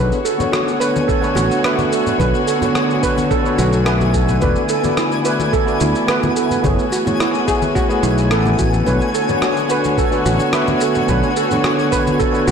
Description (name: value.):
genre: sunset chillout.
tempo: 108 BPM.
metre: 4/4.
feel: straight.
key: unclear.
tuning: A4 = 440 Hz.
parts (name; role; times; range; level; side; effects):
overdriven tine electric piano; accompaniment; 0.0-12.5 s; A3 to G#5; -20 LUFS; moving between left 7 dB and right 6 dB; auto-pan, digital delay.
warm chamber string section; sustained chords; 0.0-12.5 s; D3 to C#5; -21 LUFS; left 2 dB; none.
steel pan; arpeggios; 0.0-12.5 s; E4 to B4; -20 LUFS; right 6 dB; digital delay.
fingered electric bass; bass; 0.0-12.5 s; E1 to D2; -18 LUFS; equal; none.
twinkling granular texture; texture; 0.5-12.5 s; G#5 to G#6; -27 LUFS; left 4 dB; built-in reverb.
electronic shaker and rim click; drums; 0.1-12.5 s; none; -25 LUFS; left 1 dB; soft clipping on snare.
congas; percussion; 0.4-12.5 s; none; -27 LUFS; left 4 dB; none.
electronic kick drum; drums; 1.1-12.3 s; none; -21 LUFS; left 1 dB; none.
room: moderate lush hall reverb, RT60 2.3 s.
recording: blown-out, overdriven recording, overdrive.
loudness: -14 LUFS.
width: side -7 dB against mid.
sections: 0.0-12.5 A section.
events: none.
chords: 0.0 Bm9; 4.4 E7sus4; 6.6 F#m11; 8.9 Bm9.